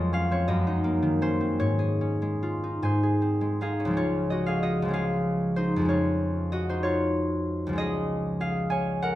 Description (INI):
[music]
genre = classical, solo harp piece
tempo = 48-65 BPM (dotted quarters)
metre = 6/8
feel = rubato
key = Db major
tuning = A4 = 440 Hz
[part]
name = concert harp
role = solo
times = 0.0-9.2 s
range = Db2 to Ab5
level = -24 LUFS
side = equal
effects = none
[sound]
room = moderate recital hall reverb, RT60 1.4 s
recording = close, detailed microphones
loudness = -24 LUFS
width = side -14 dB against mid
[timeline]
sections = 0.0-3.9 A section; 3.9-9.2 B section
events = none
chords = 0.5 Ebm7/Gb; 1.6 Db/Ab; 2.8 Ab; 3.9 Db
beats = 0.49 | 1.62 2.84 | 3.95 4.92 | 5.88 6.84 | 7.78 8.71